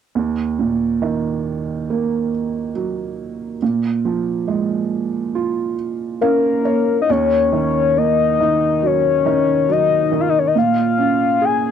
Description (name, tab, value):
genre	pop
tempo	69 BPM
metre	4/4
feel	straight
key	Eb minor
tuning	A4 = 440 Hz
part	felt-muted upright piano	accompaniment	0.2-11.7 s	Eb2 to F5	-19 LUFS	right 6 dB	none
part	soft octave-layered synth lead	melody	6.2-11.7 s	Bb4 to Ab5	-16 LUFS	left 7 dB	chorus, phaser, cassette tape
room	moderate small room ambience, RT60 0.5 s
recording	home recording on cassette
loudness	-16 LUFS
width	side -8 dB against mid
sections	0.2-7.1 A section; 7.1-11.7 B section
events	felt piano fill 5.8-7.1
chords	0.2 Ebm; 3.6 Bbm7; 7.1 Ebm7; 10.6 Bbm7